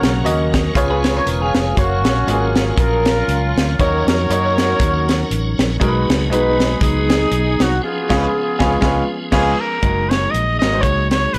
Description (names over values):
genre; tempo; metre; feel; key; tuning
uptempo gospel; 119 BPM; 4/4; swing 56% on 8ths; F# major; A4 = 441 Hz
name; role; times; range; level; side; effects
mellow horn section; melody; 0.0-9.3 s; A#3 to C#5; -22 LUFS; equal; tape echo
bright baby grand piano; accompaniment; 0.0-11.4 s; B2 to E#5; -24 LUFS; equal; none
tonewheel organ; sustained chords; 0.0-11.4 s; E#3 to E#5; -29 LUFS; equal; fast rotary speaker, chorus vibrato
fingered electric bass; bass; 0.0-11.4 s; E1 to F#2; -23 LUFS; equal; none
tight funk drum kit; drums; 0.0-11.4 s; crash cymbal, hi-hat, kick drum, snare drum; -21 LUFS; equal; none
clean electric guitar; second line; 0.9-1.8, 8.1-9.5 s; E#4 to C#5; -25 LUFS; equal; tremolo
clear trumpet; melody; 9.3-11.4 s; G#4 to D#5; -21 LUFS; equal; none
room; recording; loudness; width
little or no reverb; blown-out, overdriven recording, overdrive, lossy compression artefacts; -17 LUFS; mono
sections
0.0-9.8 A section; 9.8-11.4 B section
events
band accent 7.8-9.8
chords
0.0 F#; 0.8 C#7; 1.8 F#maj7; 3.8 D#m7; 5.8 B6; 7.8 C#7; 9.8 F#69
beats
0.26 0.77 1.27 | 1.78 2.28 2.79 3.29 | 3.79 4.30 4.80 5.31 | 5.81 6.31 6.82 7.32 | 7.82 8.32 8.83 9.33 | 9.83 10.34 10.84 11.34